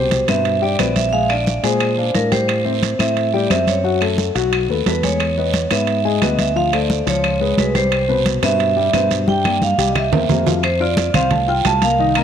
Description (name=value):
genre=Afro-Cuban jazz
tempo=177 BPM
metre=4/4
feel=straight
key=unclear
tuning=A4 = 440 Hz
part: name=vibraphone with medium mallets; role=melody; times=0.0-12.2 s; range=Bb4 to A5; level=-19 LUFS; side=right 3 dB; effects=none
part: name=dark upright piano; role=accompaniment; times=0.0-12.2 s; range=B2 to F6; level=-21 LUFS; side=left 8 dB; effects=none
part: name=fingered electric bass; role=bass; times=0.0-12.2 s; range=Bb1 to Bb2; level=-22 LUFS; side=right 1 dB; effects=none
part: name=congas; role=percussion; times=0.1-12.2 s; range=none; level=-23 LUFS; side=equal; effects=none
part: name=guiro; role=percussion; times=0.1-12.2 s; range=none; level=-30 LUFS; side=right 14 dB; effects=none
part: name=timbales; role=percussion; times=0.1-12.2 s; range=none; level=-26 LUFS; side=right 12 dB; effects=none
part: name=claves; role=percussion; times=0.3-12.2 s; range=none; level=-30 LUFS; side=left 11 dB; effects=none
room=moderate echo chamber reverb, RT60 2.4 s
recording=1960s-style stereo with parts hard left and right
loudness=-15 LUFS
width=side -8 dB against mid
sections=0.0-10.6 A section; 10.6-12.2 B section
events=drum fill 9.3-10.6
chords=0.0 Cmaj7; 1.1 Bb9; 2.5 Am7; 3.8 F#m; 4.5 B7; 5.2 Emaj7; 6.6 Dm7; 7.2 Db7#11; 7.9 Cmaj7; 9.3 Gm; 10.0 C7; 10.6 F